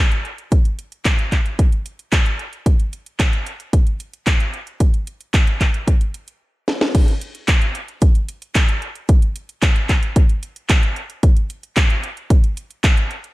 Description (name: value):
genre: italo disco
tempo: 112 BPM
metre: 4/4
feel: straight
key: none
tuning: none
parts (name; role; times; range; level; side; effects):
- house drum kit; drums; 0.1-13.3 s; crash cymbal, handclaps, hi-hat, snare drum; -22 LUFS; equal; small room reverb, gated reverb
- electronic kick drum; drums; 0.5-12.9 s; none; -15 LUFS; equal; small room reverb
room: digital ambience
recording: none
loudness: -16 LUFS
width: side -19 dB against mid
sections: 0.0-6.9 A section; 6.9-13.3 B section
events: drum fill 6.7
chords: none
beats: | 0.52 1.05 1.59 2.12 | 2.66 3.20 3.73 4.27 | 4.80 5.34 5.88 6.41 | 6.95 7.48 8.02 8.55 | 9.09 9.62 10.16 10.70 | 11.23 11.77 12.30 12.84